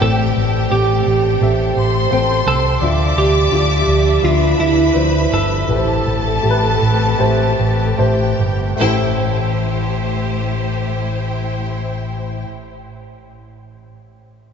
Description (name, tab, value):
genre	pop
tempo	72-86 BPM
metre	4/4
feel	straight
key	A minor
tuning	A4 = 439 Hz
part	twelve-string electric guitar	melody	0.0-12.4 s	E4 to A4	-20 LUFS	right 3 dB	none
part	warm symphonic violin section	second line	0.0-12.4 s	E4 to D6	-22 LUFS	equal	none
part	dark upright piano	accompaniment	0.0-14.5 s	A1 to G5	-22 LUFS	left 3 dB	none
part	warm symphonic string section	sustained chords	0.0-12.4 s	F3 to E5	-27 LUFS	equal	none
part	picked electric bass	bass	0.0-12.4 s	G1 to D2	-18 LUFS	equal	none
room	wet cathedral reverb, RT60 5.1 s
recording	recorded in a church or concert hall, nothing above 7.7 kHz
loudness	-14 LUFS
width	side -7 dB against mid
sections	0.0-8.8 A section; 8.8-12.1 B section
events	slowing down 2.8-8.8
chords	0.0 Am7; 2.8 Dmadd9; 5.7 Am7